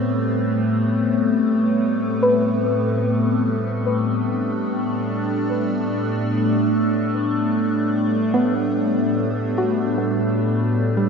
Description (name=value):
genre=ambient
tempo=free time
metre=none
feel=none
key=A dorian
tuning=A4 = 442 Hz
part: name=evolving wavetable pad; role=sustained chords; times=0.0-11.1 s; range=A2 to D4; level=-19 LUFS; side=equal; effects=chorus, built-in reverb, phaser
part: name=soft round pluck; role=arpeggios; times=0.0-11.1 s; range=G3 to B4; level=-25 LUFS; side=equal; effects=chorus, ping-pong delay
room=wet cathedral reverb, RT60 5.8 s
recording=in a vast, echoing space, nothing above 7.7 kHz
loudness=-18 LUFS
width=side -5 dB against mid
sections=0.0-11.1 A section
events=none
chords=0.0 Am7